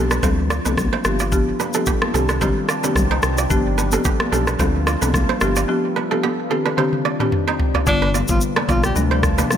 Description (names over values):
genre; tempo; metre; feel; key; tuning
afrobeats; 110 BPM; 4/4; swing 55% on 16ths; G mixolydian; A4 = 437 Hz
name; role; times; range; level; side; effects
folk marimba with medium mallets; accompaniment; 0.0-9.6 s; C3 to A4; -23 LUFS; left 2 dB; none
deep dark ambient pad; sustained chords; 0.1-9.6 s; C3 to C5; -27 LUFS; equal; chorus, built-in reverb
kora; riff; 0.0-9.5 s; B3 to D5; -24 LUFS; right 8 dB; digital delay
round analog bass; bass; 0.0-9.4 s; G1 to D2; -22 LUFS; equal; none
afro-pop drum kit; drums; 0.1-9.6 s; kick drum, rim click, shaker, toms; -22 LUFS; equal; none
congas; percussion; 0.2-9.6 s; none; -28 LUFS; left 2 dB; none
breathy tenor saxophone; melody; 7.9-8.9 s; D4 to G4; -24 LUFS; equal; digital delay
room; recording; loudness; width
light reverb, small room reverb; none; -16 LUFS; side -9 dB against mid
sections
0.0-7.9 A section; 7.9-9.6 B section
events
drum fill 6.8-7.9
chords
0.2 Dm7; 1.1 G7; 2.1 Cmadd9; 3.5 G7; 4.6 Dm7; 5.4 G7; 6.5 Cmadd9; 7.9 G7; 9.0 Dm7